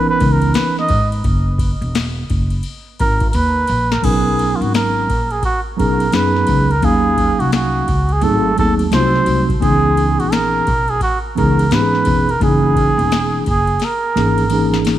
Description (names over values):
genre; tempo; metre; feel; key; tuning
hip hop, jazz-hop; 86 BPM; 4/4; swing 62% on 16ths; B major; A4 = 441 Hz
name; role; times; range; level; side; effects
trumpet with cup mute; melody; 0.0-14.9 s; E#4 to D#5; -18 LUFS; right 3 dB; tape echo
mellow tine electric piano; accompaniment; 0.0-15.0 s; D#3 to E#5; -18 LUFS; equal; medium stereo tremolo
upright bass; bass; 0.2-15.0 s; E1 to G#2; -18 LUFS; equal; none
booming analog drum machine; drums; 0.2-15.0 s; crash cymbal, hi-hat, kick drum, ride cymbal, snare drum; -21 LUFS; left 1 dB; none
room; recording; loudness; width
light reverb; 1960s-style stereo, vinyl crackle; -13 LUFS; side -12 dB against mid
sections
0.0-4.0 A section; 4.0-15.0 B section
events
muted trumpet solo 0.0-4.0; break 1.2-4.0; drum fill 3.3-4.0, 13.8-15.0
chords
0.0 C#m9; 1.2 F#13; 4.0 Bmaj9; 6.8 D#m9; 8.2 G#7b9; 9.6 C#m9; 12.4 F#13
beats
0.55 | 1.25 1.95 2.65 3.34 | 4.04 4.74 5.43 6.13 | 6.83 7.53 8.23 8.92 | 9.62 10.32 11.02 11.71 | 12.41 13.11 13.81 14.51